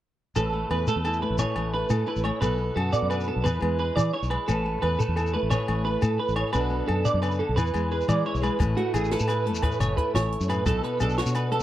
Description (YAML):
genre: highlife guitar band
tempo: 116 BPM (dotted quarters)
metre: 12/8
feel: straight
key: A major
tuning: A4 = 440 Hz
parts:
  - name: picked steel-string acoustic guitar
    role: accompaniment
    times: 0.4-11.6 s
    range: A2 to B4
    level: -30 LUFS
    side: left 3 dB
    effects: none
  - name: clean electric guitar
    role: arpeggios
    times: 0.4-11.6 s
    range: F#4 to D5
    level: -28 LUFS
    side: right 5 dB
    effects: ensemble chorus, slapback echo
  - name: fingered electric bass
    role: bass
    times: 0.4-11.6 s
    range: F#1 to E3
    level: -27 LUFS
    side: equal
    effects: none
  - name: agogo bells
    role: percussion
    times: 0.4-11.5 s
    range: none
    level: -36 LUFS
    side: left 5 dB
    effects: none
  - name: shekere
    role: percussion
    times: 0.4-11.6 s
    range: none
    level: -29 LUFS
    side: left 2 dB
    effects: none
  - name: compact cocktail drum kit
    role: drums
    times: 8.6-11.6 s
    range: hi-hat, kick drum, snare drum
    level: -29 LUFS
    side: equal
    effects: none
room: small room ambience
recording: dry, close 1970s-style studio recording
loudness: -23 LUFS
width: side -13 dB against mid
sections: 0.4-8.6 A section; 8.6-11.6 B section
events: none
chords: 0.4 Asus2; 2.4 Bm7; 3.5 E; 4.5 Asus2; 6.5 Bm7; 7.6 E; 8.6 Asus2; 10.7 Bm7